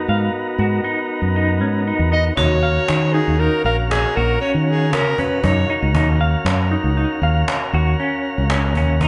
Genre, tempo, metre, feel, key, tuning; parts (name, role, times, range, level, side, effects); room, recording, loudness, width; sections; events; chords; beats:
progressive instrumental, band music in an uneven meter; 118 BPM; 7/4; straight; Eb minor; A4 = 440 Hz
vibraphone with hard mallets; second line; 0.0-9.1 s; Gb4; -32 LUFS; equal
tonewheel organ; accompaniment; 0.0-9.1 s; Cb4 to F5; -28 LUFS; equal; stopped rotary speaker
semi-hollow electric guitar; arpeggios; 0.0-9.1 s; Db4 to F5; -26 LUFS; equal; tremolo
fingered electric bass; bass; 0.1-9.1 s; Bb1 to Eb3; -21 LUFS; equal
warm soprano saxophone; melody; 2.1-5.8 s; Ab4 to Eb5; -23 LUFS; equal
cajon; drums; 2.4-9.1 s; -27 LUFS; equal
moderate large studio reverb, RT60 1.0 s; band playing live in one room, nothing above 10.8 kHz; -18 LUFS; mono
0.0-9.1 A section
0.0 Abm7; 2.4 Ebm7
0.34 0.85 1.36 1.87 | 2.38 2.89 3.40 3.91 4.42 4.93 5.44 | 5.95 6.46 6.97 7.48 7.99 8.51 9.02